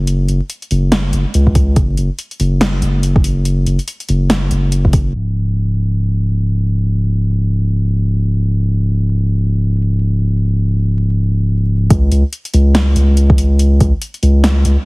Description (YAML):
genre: deep dubstep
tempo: 142 BPM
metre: 4/4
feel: swing 60% on 16ths, half-time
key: unclear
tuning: A4 = 439 Hz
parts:
  - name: saturated sub bass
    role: bass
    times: 0.0-14.8 s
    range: C#1 to C#2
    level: -12 LUFS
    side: equal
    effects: none
  - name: deep house drum kit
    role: drums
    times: 0.1-5.2, 11.9-14.8 s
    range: crash cymbal, hi-hat, snare drum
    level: -18 LUFS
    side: equal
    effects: overdrive
  - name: electronic kick drum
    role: drums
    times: 1.5-5.0, 11.9-13.9 s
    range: none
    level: -13 LUFS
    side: equal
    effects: overdrive
room: little or no reverb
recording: heavily compressed radio sound, multiband compression, vinyl crackle, low-pass filter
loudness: -12 LUFS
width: side -29 dB against mid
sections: 0.0-5.1 A section; 5.1-11.9 B section; 11.9-14.8 C section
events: filter sweep 5.1-11.9; drop 11.9-14.8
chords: none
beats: | 0.07 0.50 0.92 1.34 | 1.76 2.19 2.61 3.03 | 3.45 3.88 4.30 4.72 | 5.14 5.57 5.99 6.41 | 6.83 7.26 7.68 8.10 | 8.52 8.95 9.37 9.79 | 10.21 10.64 11.06 11.48 | 11.90 12.33 12.75 13.17 | 13.60 14.02 14.44